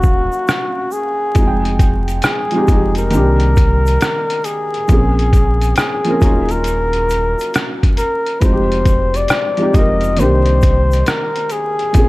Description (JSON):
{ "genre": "lo-fi hip hop", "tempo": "68 BPM", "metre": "4/4", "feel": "swing 65% on 16ths", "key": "F dorian", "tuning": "A4 = 438 Hz", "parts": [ { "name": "warm flugelhorn", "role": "melody", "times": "0.0-12.1 s", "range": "Gb4 to Eb5", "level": "-18 LUFS", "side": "left 1 dB", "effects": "low-pass filter, analog delay" }, { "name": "felt-muted upright piano", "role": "accompaniment", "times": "0.0-12.1 s", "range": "Eb3 to G5", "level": "-20 LUFS", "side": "equal", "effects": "cassette tape, low-pass filter" }, { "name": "sub bass with octave", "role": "bass", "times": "0.0-12.1 s", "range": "Eb1 to C2", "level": "-17 LUFS", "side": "equal", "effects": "none" }, { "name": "trip hop sampler-style drum kit", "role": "drums", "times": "0.0-12.1 s", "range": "hi-hat, kick drum, rim click", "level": "-15 LUFS", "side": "equal", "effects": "vintage 12-bit sampler grit" }, { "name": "egg shaker", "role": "percussion", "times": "0.0-12.1 s", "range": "none", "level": "-39 LUFS", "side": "right 4 dB", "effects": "none" } ], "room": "little or no reverb", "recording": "vinyl crackle", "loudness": "-12 LUFS", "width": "side -20 dB against mid", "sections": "0.0-12.1 A section", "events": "break 0.0-1.4", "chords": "0.0 Ebm7; 1.4 Fm7; 3.1 Cm7; 4.9 Bbm7; 6.2 Ebm7; 8.4 Fm7; 10.2 Cm7", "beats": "0.48 | 1.36 2.24 3.12 4.01 | 4.89 5.77 6.65 7.54 | 8.42 9.30 10.18 11.06 | 11.95" }